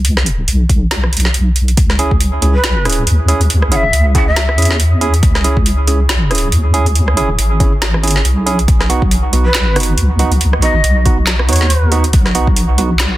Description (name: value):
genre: deep dubstep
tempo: 139 BPM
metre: 4/4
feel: swing 57% on 16ths, half-time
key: C# minor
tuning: A4 = 440 Hz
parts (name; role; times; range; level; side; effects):
- deep soft wobble bass; bass; 0.0-13.2 s; G#1 to E2; -13 LUFS; equal; chorus
- garage drum kit; drums; 0.0-13.1 s; handclaps, hi-hat, rim click, snare drum; -17 LUFS; right 1 dB; overdrive, small room ambience
- electronic kick drum; drums; 0.7-12.5 s; none; -13 LUFS; equal; overdrive, small room ambience
- barky tine electric piano; stabs; 2.0-12.9 s; B3 to G#4; -19 LUFS; right 4 dB; overdrive, dub echo
- breathy shakuhachi; melody; 2.5-4.7, 9.5-11.9 s; B4 to F#5; -20 LUFS; left 1 dB; dub echo
room: light reverb, digital ambience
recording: dense, heavily limited modern master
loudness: -10 LUFS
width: side -16 dB against mid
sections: 0.0-13.2 A section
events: none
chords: 0.0 N.C.; 1.8 C#m; 8.7 B